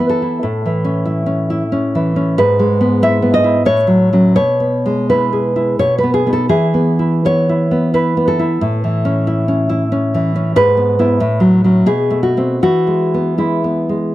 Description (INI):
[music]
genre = romantic piece for solo classical guitar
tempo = 74-97 BPM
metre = 3/4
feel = rubato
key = E major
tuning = A4 = 439 Hz
[part]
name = nylon-string guitar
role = solo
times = 0.0-14.1 s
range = G#2 to E5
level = -12 LUFS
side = equal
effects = none
[sound]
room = studio reverb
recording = dry, close 1970s-style studio recording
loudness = -12 LUFS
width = side -15 dB against mid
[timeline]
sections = 0.0-14.1 A section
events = none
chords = 0.4 A; 2.4 E/G#; 3.7 F#m/A; 4.4 E/B; 5.8 B; 6.5 E; 8.6 A; 10.6 E/G#; 11.2 F#m/A; 11.9 B5; 12.6 E